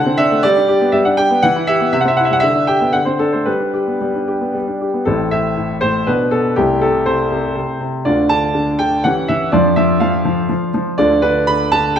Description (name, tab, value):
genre	classical-period piano sonatina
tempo	121 BPM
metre	3/4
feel	rubato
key	G major, A minor from 5.1 s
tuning	A4 = 440 Hz
part	clear concert grand piano	solo	0.0-12.0 s	A1 to B5	-13 LUFS	equal	none
room	wet recital hall reverb, RT60 1.4 s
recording	none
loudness	-13 LUFS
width	side -8 dB against mid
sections	0.0-5.1 A section; 5.1-12.0 B section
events	none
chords	0.4 G; 1.4 Em; 1.9 C; 2.4 G/D; 2.9 D5; 3.5 G; 5.1 Am; 6.1 Bm7; 6.6 Am/C; 8.1 Dm; 9.0 C#dim/E; 9.5 Dm/F; 11.0 Dm6